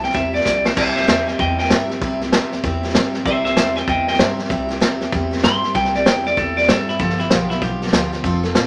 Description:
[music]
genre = rockabilly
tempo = 193 BPM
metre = 4/4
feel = swing 63% on 8ths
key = C major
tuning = A4 = 442 Hz
[part]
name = clean electric guitar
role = melody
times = 0.0-8.2 s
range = E4 to C6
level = -22 LUFS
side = equal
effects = none
[part]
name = picked steel-string acoustic guitar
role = accompaniment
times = 0.0-8.7 s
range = G2 to A4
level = -26 LUFS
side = equal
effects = none
[part]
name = upright bass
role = bass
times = 0.0-8.7 s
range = F1 to G2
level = -29 LUFS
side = equal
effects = none
[part]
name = vintage drum kit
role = drums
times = 0.0-8.6 s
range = crash cymbal, hi-hat, kick drum, snare drum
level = -22 LUFS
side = equal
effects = none
[sound]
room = moderate studio reverb, RT60 0.7 s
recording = none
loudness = -18 LUFS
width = mono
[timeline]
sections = 0.8-8.7 A section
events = drum fill 0.5-0.8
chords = 0.0 C; 7.0 G7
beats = 0.15 0.46 | 0.77 1.08 1.39 1.71 | 2.02 2.33 2.64 2.95 | 3.26 3.57 3.88 4.20 | 4.51 4.82 5.13 5.44 | 5.75 6.06 6.38 6.69 | 7.00 7.31 7.62 7.93 | 8.24 8.55

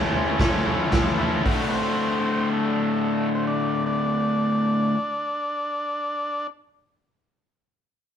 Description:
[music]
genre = garage rock duo or trio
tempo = 113 BPM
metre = 4/4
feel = straight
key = D major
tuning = A4 = 439 Hz
[part]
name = overdriven combo organ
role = melody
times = 0.0-6.5 s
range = F3 to D4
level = -27 LUFS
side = equal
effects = none
[part]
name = raw garage guitar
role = riff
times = 0.0-5.0 s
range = D2 to A4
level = -22 LUFS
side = left 1 dB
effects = overdrive
[part]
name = raw garage drum kit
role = drums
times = 0.1-1.6 s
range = hi-hat, kick drum, snare drum, toms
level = -24 LUFS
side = right 1 dB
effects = none
[sound]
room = light reverb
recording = band playing live in one room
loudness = -21 LUFS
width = side -8 dB against mid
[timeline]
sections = 0.0-1.4 A section; 1.4-5.7 B section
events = none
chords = 0.0 A; 1.4 D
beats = 0.38 0.92 | 1.45 1.98 2.51 3.04 | 3.58 4.11 4.64 5.17

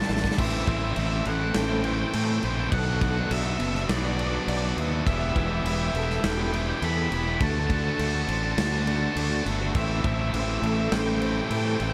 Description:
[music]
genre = post-rock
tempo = 103 BPM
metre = 4/4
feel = straight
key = A dorian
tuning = A4 = 440 Hz
[part]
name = octave-fuzz lead guitar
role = melody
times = 0.0-11.9 s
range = D5 to B5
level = -34 LUFS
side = equal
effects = distortion, analog delay
[part]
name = evolving wavetable pad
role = sustained chords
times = 1.7-11.9 s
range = E3 to B5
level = -44 LUFS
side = equal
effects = none
[part]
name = electric guitar through a small old amp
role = arpeggios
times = 0.0-11.9 s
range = A4 to E5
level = -39 LUFS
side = equal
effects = tremolo, analog delay
[part]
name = tight distorted guitar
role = riff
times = 0.0-11.9 s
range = A2 to G4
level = -35 LUFS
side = equal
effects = distortion
[part]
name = big rock drum kit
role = drums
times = 0.0-11.9 s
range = crash cymbal, kick drum, snare drum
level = -33 LUFS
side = equal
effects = none
[part]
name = fuzz fingered electric bass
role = bass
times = 0.1-11.9 s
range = E1 to A2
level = -30 LUFS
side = equal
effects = overdrive
[part]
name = distorted electric guitar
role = riff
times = 0.4-11.9 s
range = A2 to G4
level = -34 LUFS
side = equal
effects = distortion
[sound]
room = studio ambience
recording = none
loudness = -26 LUFS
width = mono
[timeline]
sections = 0.4-11.9 A section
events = drum fill 0.0-0.4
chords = 0.4 Am7; 2.7 Bm7; 5.1 Em; 7.4 D; 9.7 Am7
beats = | 0.39 0.97 1.56 2.14 | 2.73 3.31 3.90 4.48 | 5.07 5.65 6.24 6.82 | 7.41 7.99 8.58 9.16 | 9.75 10.34 10.92 11.51

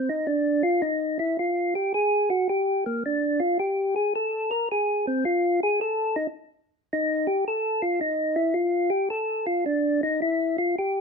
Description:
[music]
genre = jazz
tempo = 109 BPM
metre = 4/4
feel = swing 67% on 8ths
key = F mixolydian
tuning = A4 = 439 Hz
[part]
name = percussive tonewheel organ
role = solo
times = 0.0-11.0 s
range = Bb3 to Bb4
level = -22 LUFS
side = equal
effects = slow rotary speaker
[sound]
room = light reverb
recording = band playing live in one room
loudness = -22 LUFS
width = side -5 dB against mid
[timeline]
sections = 0.0-11.0 A section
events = tonewheel organ solo 0.0-11.0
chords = none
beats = 0.27 0.82 | 1.38 1.93 2.48 3.03 | 3.58 4.14 4.69 5.24 | 5.79 6.34 6.90 7.45 | 8.00 8.55 9.10 9.65 | 10.20 10.76

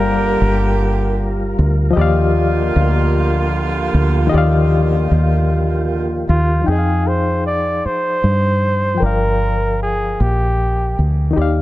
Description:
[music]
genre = R&B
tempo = 51 BPM (dotted quarters)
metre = 6/8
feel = straight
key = unclear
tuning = A4 = 439 Hz
[part]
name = breathy flugelhorn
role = melody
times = 0.0-1.2, 6.3-11.1 s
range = F4 to D5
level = -20 LUFS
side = right 1 dB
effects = none
[part]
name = bright reed electric piano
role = accompaniment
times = 0.0-11.6 s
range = Eb3 to G5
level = -21 LUFS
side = left 5 dB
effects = fast tremolo
[part]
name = tonewheel organ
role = sustained chords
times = 0.0-6.6 s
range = F3 to Bb4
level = -24 LUFS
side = right 2 dB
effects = chorus vibrato, slow rotary speaker
[part]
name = clear horn section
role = stabs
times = 0.0-6.2 s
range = D3 to G4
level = -24 LUFS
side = right 4 dB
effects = none
[part]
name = deep dub fingered electric bass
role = bass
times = 0.0-11.6 s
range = G1 to G2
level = -16 LUFS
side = equal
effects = none
[sound]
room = little or no reverb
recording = none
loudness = -14 LUFS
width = side -16 dB against mid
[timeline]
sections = 0.0-6.7 A section; 6.7-11.6 B section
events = none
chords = 0.0 Gm7; 1.9 Ebmaj9; 6.7 Fm9; 9.0 Gm7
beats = 0.77 | 1.95 3.13 | 4.30 5.48 | 6.66 7.83 | 9.01 10.19 | 11.36

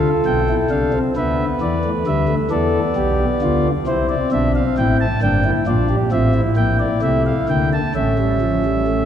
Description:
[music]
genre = classical, baroque-style 4-part fugue for pipe organ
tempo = 44 BPM (dotted quarters)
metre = 6/8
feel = straight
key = unclear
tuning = A4 = 440 Hz
[part]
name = chamber organ, principal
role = solo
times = 0.0-9.1 s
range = G1 to A5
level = -15 LUFS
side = equal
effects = none
[sound]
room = wet church reverb, RT60 3.6 s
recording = dark, warm production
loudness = -16 LUFS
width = side -9 dB against mid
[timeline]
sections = 0.0-9.1 A section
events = none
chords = 0.0 Dm; 1.2 G69/D; 2.5 Em; 3.9 C; 5.2 Em7b5/G; 8.0 A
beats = 1.17 | 2.53 3.88 | 5.23 6.59 | 7.96

